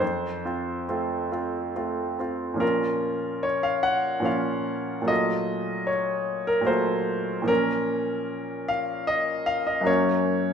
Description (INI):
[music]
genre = classical, romantic nocturne for solo piano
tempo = 68-77 BPM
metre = 3/4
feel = rubato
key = Bb minor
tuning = A4 = 440 Hz
[part]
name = clear concert grand piano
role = solo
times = 0.0-10.5 s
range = F2 to Gb5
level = -23 LUFS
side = equal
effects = none
[sound]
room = moderate recital hall reverb, RT60 1.5 s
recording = minimal, uncompressed stereo recording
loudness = -23 LUFS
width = side -7 dB against mid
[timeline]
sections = 0.0-2.6 A section; 2.6-10.5 B section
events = none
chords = 0.0 F; 2.6 Bbm; 5.1 F7b9/Bb; 7.5 Bbm; 9.9 Gb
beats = | 0.01 0.89 1.76 | 2.62 3.45 4.27 | 5.10 5.90 6.70 | 7.50 8.31 9.10 | 9.88